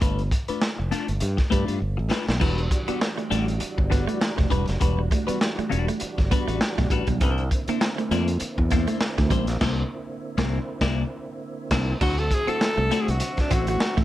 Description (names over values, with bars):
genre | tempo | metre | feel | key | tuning
funk | 100 BPM | 4/4 | swing 56% on 16ths | unclear | A4 = 439 Hz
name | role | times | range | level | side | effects
clean electric guitar | accompaniment | 0.0-14.0 s | G3 to D5 | -29 LUFS | left 6 dB | phaser
modern bright fingered electric bass | bass | 0.0-14.0 s | E1 to G2 | -26 LUFS | equal | none
crunchy breakbeat drum kit | drums | 0.0-14.0 s | crash cymbal, hi-hat, kick drum, snare drum | -25 LUFS | equal | none
tonewheel organ | sustained chords | 2.4-14.0 s | D3 to E5 | -34 LUFS | right 2 dB | chorus vibrato, slow rotary speaker
clean electric guitar | riff | 2.4-14.0 s | E3 to D4 | -31 LUFS | right 6 dB | none
edgy alto saxophone | melody | 12.0-14.0 s | D4 to A4 | -26 LUFS | equal | none
room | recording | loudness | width
light reverb | none | -21 LUFS | side -14 dB against mid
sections
0.0-2.4 A section; 2.4-12.0 B section; 12.0-14.0 C section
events
break 0.0-2.4; drum fill 1.8-2.4; band accent 9.6-12.0; alto saxophone solo 12.0-14.0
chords
0.0 G9; 2.4 Em9; 7.2 C9; 12.0 D9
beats
| 0.02 0.62 1.22 1.82 | 2.42 3.02 3.62 4.21 | 4.82 5.42 6.01 6.62 | 7.22 7.82 8.42 9.02 | 9.62 10.22 10.81 11.41 | 12.02 12.61 13.21 13.81